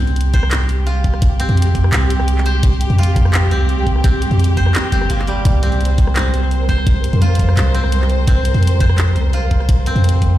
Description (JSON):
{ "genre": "half-time drum and bass", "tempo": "170 BPM", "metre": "4/4", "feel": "half-time", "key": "unclear", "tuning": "A4 = 441 Hz", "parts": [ { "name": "koto", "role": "arpeggios", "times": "0.0-10.4 s", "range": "G3 to C5", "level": "-23 LUFS", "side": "right 2 dB", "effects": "ping-pong delay" }, { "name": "long sustained 808-style bass", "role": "bass", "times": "0.0-10.4 s", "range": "G1 to F2", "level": "-15 LUFS", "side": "equal", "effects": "none" }, { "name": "flickering grainy texture", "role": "texture", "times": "0.7-10.4 s", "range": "G3 to Bb4", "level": "-26 LUFS", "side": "right 1 dB", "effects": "built-in reverb" }, { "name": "drum and bass drum kit", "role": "drums", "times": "0.1-10.3 s", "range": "handclaps, hi-hat, rim click", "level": "-24 LUFS", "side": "equal", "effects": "small room ambience" }, { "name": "rich symphonic string section", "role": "sustained chords", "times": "0.2-10.4 s", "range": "G4 to C5", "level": "-27 LUFS", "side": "left 2 dB", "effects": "sidechain pumping" }, { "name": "electronic kick drum", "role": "drums", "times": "0.3-10.3 s", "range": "none", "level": "-15 LUFS", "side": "equal", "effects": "small room ambience" } ], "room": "digital ambience", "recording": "played on a big sound system in a bare room, large studio reverb", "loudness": "-13 LUFS", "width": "side -14 dB against mid", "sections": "0.0-10.4 A section", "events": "none", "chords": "0.0 C5", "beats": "0.16 0.51 0.86 | 1.22 1.57 1.92 2.28 | 2.63 2.98 3.34 3.69 | 4.04 4.39 4.75 5.10 | 5.45 5.81 6.16 6.51 | 6.87 7.22 7.57 7.92 | 8.28 8.63 8.98 9.34 | 9.69 10.04" }